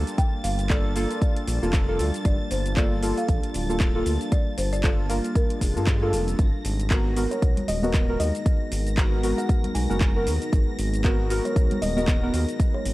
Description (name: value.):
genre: deep house.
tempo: 116 BPM.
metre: 4/4.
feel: swing 57% on 16ths.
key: unclear.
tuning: A4 = 438 Hz.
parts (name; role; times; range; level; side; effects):
deep dark ambient pad; sustained chords; 0.0-12.9 s; G3 to A5; -33 LUFS; equal; chorus, built-in reverb, sidechain pumping.
round analog bass; bass; 0.0-12.9 s; D1 to G2; -26 LUFS; equal; tube saturation, sidechain pumping.
string machine, violins; texture; 0.0-12.9 s; A6 to A#6; -41 LUFS; equal; ensemble chorus, sidechain pumping.
house drum kit; drums; 0.1-12.9 s; handclaps, hi-hat, shaker; -34 LUFS; equal; studio reverb.
folk marimba with medium mallets; melody; 0.2-6.1 s; Bb4 to G5; -34 LUFS; equal; analog delay.
electronic kick drum; drums; 0.2-12.7 s; none; -22 LUFS; equal; studio reverb.
deep mellow chord stab; stabs; 0.7-12.4 s; Bb3 to Bb4; -29 LUFS; equal; chorus, sidechain pumping, analog delay.
swell; sound effects; 5.5-6.4 s; none; -38 LUFS; equal; none.
kalimba; melody; 7.3-12.9 s; C#5 to G#5; -32 LUFS; left 2 dB; tape echo.
congas; percussion; 7.6-12.1 s; none; -31 LUFS; left 2 dB; sidechain pumping on perc.
room: little or no reverb.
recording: dry, gritty hardware recording, vinyl crackle.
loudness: -21 LUFS.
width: side -18 dB against mid.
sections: 0.0-12.9 A section.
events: swell 5.5-6.4.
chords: 0.0 Gm9; 6.4 G#m9.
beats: | 0.18 0.70 1.22 1.73 | 2.25 2.77 3.29 3.80 | 4.32 4.84 5.35 5.87 | 6.39 6.91 7.42 7.94 | 8.46 8.97 9.49 10.01 | 10.53 11.04 11.56 12.08 | 12.60.